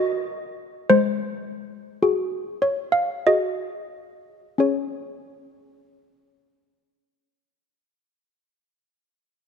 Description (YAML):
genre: classical, tune for handbells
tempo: 44-56 BPM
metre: 3/4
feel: straight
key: unclear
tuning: A4 = 440 Hz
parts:
  - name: malleted handbells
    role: solo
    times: 0.0-7.7 s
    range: Ab3 to F5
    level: -20 LUFS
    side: left 1 dB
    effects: none
room: wet concert hall reverb, RT60 2.4 s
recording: close, detailed microphones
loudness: -21 LUFS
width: side -6 dB against mid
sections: 0.0-4.6 A section; 4.6-8.6 B section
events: slowing down 0.0-4.6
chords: 0.0 Ebm/Gb; 0.9 Ab7; 4.6 Db5